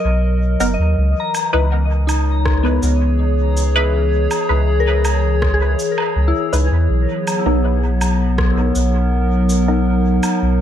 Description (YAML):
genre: ambient dub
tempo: 81 BPM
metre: 4/4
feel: straight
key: C# dorian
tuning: A4 = 439 Hz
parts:
  - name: warbly tape-like pad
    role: sustained chords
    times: 0.0-10.6 s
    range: E3 to F#5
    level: -20 LUFS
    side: left 1 dB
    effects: chorus, built-in reverb
  - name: soft synth bell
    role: arpeggios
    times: 0.0-7.0 s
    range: B3 to A#5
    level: -25 LUFS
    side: left 4 dB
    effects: chorus, phaser, dub echo
  - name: soft dub sub bass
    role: bass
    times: 0.0-10.6 s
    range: F#1 to E2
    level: -16 LUFS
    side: equal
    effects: tube saturation
  - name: filtered dub chord stab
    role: stabs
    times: 0.6-9.9 s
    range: B3 to B4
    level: -24 LUFS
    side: equal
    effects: phaser, analog chorus, dub echo
  - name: electronic shaker, woodblock and rim click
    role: drums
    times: 0.6-10.4 s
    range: none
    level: -25 LUFS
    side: right 1 dB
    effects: dub echo
  - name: electronic kick drum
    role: drums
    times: 2.5-8.5 s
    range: none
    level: -23 LUFS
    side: equal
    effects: none
room: light reverb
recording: none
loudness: -14 LUFS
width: side -10 dB against mid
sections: 0.0-10.6 A section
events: none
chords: 0.0 Bmaj7; 1.0 C#m9; 6.9 Bmaj7